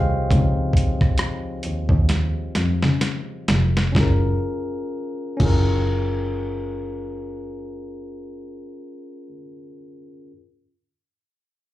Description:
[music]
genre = R&B, neo-soul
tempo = 62-70 BPM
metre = 4/4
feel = swing 59% on 16ths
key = Gb lydian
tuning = A4 = 440 Hz
[part]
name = tine electric piano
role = accompaniment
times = 0.0-10.3 s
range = F3 to G5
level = -28 LUFS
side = left 2 dB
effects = slapback echo
[part]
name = rich double bass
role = bass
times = 0.0-8.6 s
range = F1 to Db3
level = -21 LUFS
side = equal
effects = none
[part]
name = boom bap sampler-style drum kit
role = drums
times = 0.3-5.7 s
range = crash cymbal, hi-hat, kick drum, rim click, snare drum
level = -21 LUFS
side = equal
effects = none
[sound]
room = little or no reverb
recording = live gig heard through the venue's PA, club reverb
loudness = -19 LUFS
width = side -15 dB against mid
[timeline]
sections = 0.0-3.9 A section; 3.9-7.8 B section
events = slowing down 0.0-3.9; tine electric piano solo 0.0-3.9; drum fill 2.1-3.9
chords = 0.0 Dbmaj9; 3.9 Gbmaj7

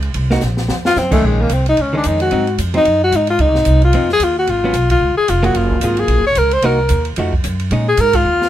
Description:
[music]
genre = jazz, small-group swing and bop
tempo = 222 BPM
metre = 4/4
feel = swing 58% on 8ths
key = Bb minor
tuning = A4 = 440 Hz
[part]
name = upright bass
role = bass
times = 0.0-8.5 s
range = F1 to Bb2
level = -17 LUFS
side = right 1 dB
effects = none
[part]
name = open jazz drum kit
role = drums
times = 0.0-8.5 s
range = crash cymbal, hi-hat, kick drum, ride cymbal, snare drum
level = -24 LUFS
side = right 1 dB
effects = none
[part]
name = hollow-body jazz guitar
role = accompaniment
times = 0.3-7.9 s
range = Eb3 to Ab4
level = -19 LUFS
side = right 2 dB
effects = none
[part]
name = breathy tenor saxophone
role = melody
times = 0.9-8.5 s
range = Ab3 to Db5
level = -14 LUFS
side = left 2 dB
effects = none
[sound]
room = light reverb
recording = minimal, uncompressed stereo recording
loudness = -12 LUFS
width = side -12 dB against mid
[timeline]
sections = 0.0-1.2 A section; 1.2-8.5 A section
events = tenor saxophone solo 0.0-8.5; drum fill 0.4-1.0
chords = 0.2 Cm7b5; 0.7 F7(no3); 1.2 Bbm11; 2.3 Ab7; 3.4 Dbmaj9 (rootless); 4.5 Abm7; 5.0 Gbmaj9; 6.6 Cm7b5; 7.2 F7b9; 7.7 Bbm11

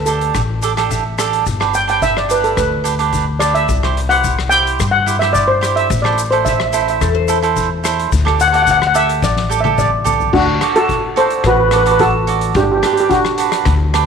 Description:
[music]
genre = calypso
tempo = 108 BPM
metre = 4/4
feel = straight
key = unclear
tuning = A4 = 440 Hz
[part]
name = steel pan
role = melody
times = 0.0-14.1 s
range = D4 to G5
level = -15 LUFS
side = equal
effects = none
[part]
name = upright bass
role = bass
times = 0.0-14.1 s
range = G1 to G2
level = -19 LUFS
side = left 2 dB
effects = none
[part]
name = cavaquinho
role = accompaniment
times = 0.1-14.0 s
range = D4 to E5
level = -19 LUFS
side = right 11 dB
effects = none
[part]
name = soft-mallet drum kit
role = drums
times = 0.1-14.1 s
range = crash cymbal, hi-hat, kick drum, rim click, snare drum, toms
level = -22 LUFS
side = left 5 dB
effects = none
[part]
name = tube shaker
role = percussion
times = 0.1-10.3 s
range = none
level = -29 LUFS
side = left 16 dB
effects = none
[part]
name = oud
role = second line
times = 7.0-8.2 s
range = A4 to C5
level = -21 LUFS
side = left 13 dB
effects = none
[sound]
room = light reverb, small room ambience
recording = 1960s-style stereo with parts hard left and right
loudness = -12 LUFS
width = side -6 dB against mid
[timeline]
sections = 0.0-10.3 A section; 10.3-14.1 B section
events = steel pan solo 0.0-10.3; cavaquinho fill 0.6-1.5; drum fill 9.2-10.3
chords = 0.0 Dsus4; 1.5 G; 3.7 C; 5.9 Am; 8.1 Dsus4; 10.3 D; 12.6 Gmaj7

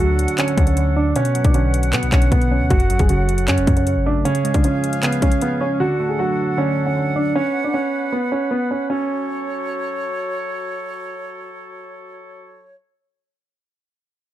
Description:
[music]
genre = hip hop, trap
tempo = 155 BPM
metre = 4/4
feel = half-time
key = F# harmonic minor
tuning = A4 = 439 Hz
[part]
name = dark concert grand piano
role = melody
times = 0.0-10.0 s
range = B3 to G#4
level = -21 LUFS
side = right 2 dB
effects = low-pass filter, ping-pong delay
[part]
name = warbly lo-fi synth keys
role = accompaniment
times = 0.0-7.4 s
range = F#2 to D4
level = -22 LUFS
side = right 1 dB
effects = chorus, low-pass filter
[part]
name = mellow woodwind section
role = sustained chords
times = 0.0-12.8 s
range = C#3 to F#5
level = -27 LUFS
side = equal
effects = none
[part]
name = clean 808-style bass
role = bass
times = 0.0-4.2 s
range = F#1 to B2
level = -19 LUFS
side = left 1 dB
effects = none
[part]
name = trap drum kit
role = drums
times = 0.2-5.5 s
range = handclaps, hi-hat, kick drum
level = -19 LUFS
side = left 1 dB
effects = none
[sound]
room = little or no reverb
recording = dark, warm production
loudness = -16 LUFS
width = side -13 dB against mid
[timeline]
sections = 0.0-8.9 A section; 8.9-12.0 B section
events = none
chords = 0.0 D; 1.2 Bm; 2.7 F#m; 4.3 C#; 5.8 D; 7.4 B5; 8.9 F#m

